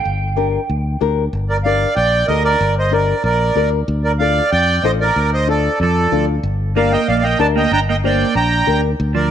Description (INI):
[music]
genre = latin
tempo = 188 BPM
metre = 4/4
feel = straight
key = G minor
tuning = A4 = 440 Hz
[part]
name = clean electric guitar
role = second line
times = 0.0-1.0, 5.8-9.3 s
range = F3 to G5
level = -22 LUFS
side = right 9 dB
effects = analog chorus
[part]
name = fingered electric bass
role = bass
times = 0.1-9.3 s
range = G1 to F2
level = -18 LUFS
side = equal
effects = none
[part]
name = nylon-string guitar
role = accompaniment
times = 0.4-8.9 s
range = D4 to C5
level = -22 LUFS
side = left 11 dB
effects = none
[part]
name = accordion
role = melody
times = 1.5-9.3 s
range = A4 to Bb5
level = -16 LUFS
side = right 2 dB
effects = none
[sound]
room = moderate plate reverb, RT60 2.4 s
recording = 1960s-style stereo with parts hard left and right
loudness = -14 LUFS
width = side -9 dB against mid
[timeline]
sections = 0.0-1.3 A section; 1.3-9.3 B section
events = clean electric guitar solo 0.0-1.3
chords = 0.1 Gm; 3.9 Dm; 6.4 Gm